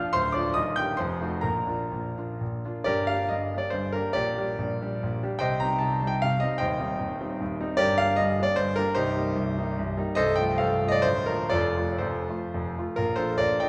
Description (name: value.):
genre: classical, romantic triple-time dance for piano with dotted rhythms.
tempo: 113-167 BPM.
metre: 3/4.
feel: rubato.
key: G minor, Bb major from 7.8 s.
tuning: A4 = 437 Hz.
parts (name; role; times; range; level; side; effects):
clear concert grand piano; solo; 0.0-13.7 s; C1 to G6; -27 LUFS; equal; none.
room: wet scoring stage reverb, RT60 2.0 s.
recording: recorded in a church or concert hall.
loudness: -27 LUFS.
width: mono.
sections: 0.0-2.9 A section; 2.9-13.0 B section.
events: none.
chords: 0.1 Dm; 0.6 Ebmaj7; 1.0 F7b9; 1.4 Bb; 2.9 Gm; 4.2 Gm/Bb; 5.4 Cm; 6.6 Cm/Eb; 7.8 Gm; 9.0 Cm7; 10.2 F/C; 11.1 Bb/D; 11.5 F; 13.0 Bb.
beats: | 0.14 0.55 0.98 | 1.43 1.92 2.41 | 2.87 3.32 3.75 | 4.16 4.59 5.03 | 5.42 5.83 6.24 | 6.61 6.99 7.41 | 7.80 8.20 8.59 | 8.97 9.37 9.79 | 10.18 10.61 11.05 | 11.52 12.03 12.54 | 12.99 13.42.